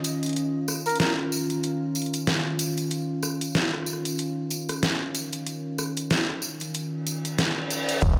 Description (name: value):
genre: glitch hop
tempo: 94 BPM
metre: 4/4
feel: swing 57% on 16ths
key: unclear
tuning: A4 = 440 Hz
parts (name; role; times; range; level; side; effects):
- warm analog pad; sustained chords; 0.0-8.0 s; Eb3 to F4; -31 LUFS; equal; chorus, sidechain pumping
- dubstep drum kit; drums; 0.0-8.2 s; crash cymbal, hi-hat, rim click, snare drum; -30 LUFS; equal; none
- tambourine; percussion; 0.0-8.2 s; none; -36 LUFS; equal; none
- mellow trumpet; melody; 0.9-1.1 s; Bb4; -34 LUFS; equal; dub echo
- reverse cymbal and downlifter; sound effects; 7.3-8.2 s; none; -33 LUFS; equal; none
- phased detuned saw bass; bass; 8.0-8.2 s; Eb1; -25 LUFS; equal; phaser, overdrive
- electronic kick drum; drums; 8.0-8.2 s; none; -24 LUFS; equal; none
room: moderate lush hall reverb, RT60 2.6 s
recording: none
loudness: -27 LUFS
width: mono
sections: 0.0-8.0 A section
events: reverse cymbal 7.3-8.0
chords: 0.0 Eb7(no3)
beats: | 0.36 1.00 1.64 2.28 | 2.92 3.56 4.19 4.83 | 5.47 6.11 6.75 7.38 | 8.02